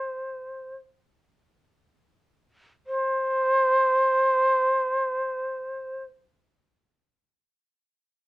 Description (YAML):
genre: japanese traditional, Japanese chamber music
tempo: free time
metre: none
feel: none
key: unclear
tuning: A4 = 440 Hz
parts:
  - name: reedy shakuhachi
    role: solo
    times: 0.0-6.0 s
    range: C5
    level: -22 LUFS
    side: equal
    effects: none
room: light reverb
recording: worn, warbling old tape, cassette tape, warbly pitch drift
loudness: -22 LUFS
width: side -19 dB against mid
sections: 0.0-2.9 A section; 2.9-8.3 B section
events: slowing down 0.0-2.9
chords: none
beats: free time